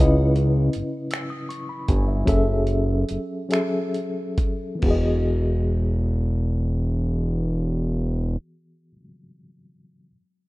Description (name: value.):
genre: slow six-eight R&B.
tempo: 43-54 BPM (dotted quarters).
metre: 6/8.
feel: straight.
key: E major.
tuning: A4 = 438 Hz.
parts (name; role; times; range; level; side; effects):
reed electric piano; accompaniment; 0.0-10.1 s; C#3 to E6; -25 LUFS; left 1 dB; tremolo.
fat analog bass; bass; 0.0-8.4 s; E1 to C#2; -21 LUFS; equal; none.
dusty soul sampler-style drum kit; drums; 0.0-5.0 s; crash cymbal, finger snaps, hi-hat, kick drum; -24 LUFS; equal; none.
room: digital ambience.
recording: rough home demo mix.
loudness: -21 LUFS.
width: side -20 dB against mid.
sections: 0.0-4.8 A section; 4.8-7.6 B section.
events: slowing down 0.0-4.8.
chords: 0.0 C#m9; 2.3 F#m9; 4.8 Emaj9.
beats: 1.11 | 2.27 3.50 | 4.83 6.22.